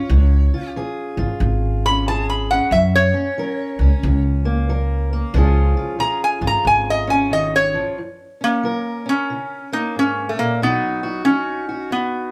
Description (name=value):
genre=acoustic country blues, solo or duo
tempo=91 BPM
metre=4/4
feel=swing 64% on 8ths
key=F# major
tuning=A4 = 441 Hz
part: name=metal-body resonator slide guitar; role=melody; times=0.0-12.3 s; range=A3 to B5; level=-21 LUFS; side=equal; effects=none
part: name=fingerpicked steel-string acoustic guitar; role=accompaniment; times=0.0-12.3 s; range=F#2 to A#4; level=-27 LUFS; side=equal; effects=none
part: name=upright bass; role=bass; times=0.1-7.8 s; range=G#1 to F#2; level=-20 LUFS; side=equal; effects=none
room=light reverb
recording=band playing live in one room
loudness=-19 LUFS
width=mono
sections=0.0-8.0 A section; 8.0-12.3 B section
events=resonator guitar played with a steel bar solo 0.0-8.0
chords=0.0 C#; 2.7 F#; 5.3 C#; 8.0 F#; 10.6 B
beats=| 0.09 0.75 1.40 2.06 | 2.72 3.37 4.03 4.69 | 5.34 6.00 6.66 7.31 | 7.97 8.63 9.29 9.95 | 10.60 11.26 11.92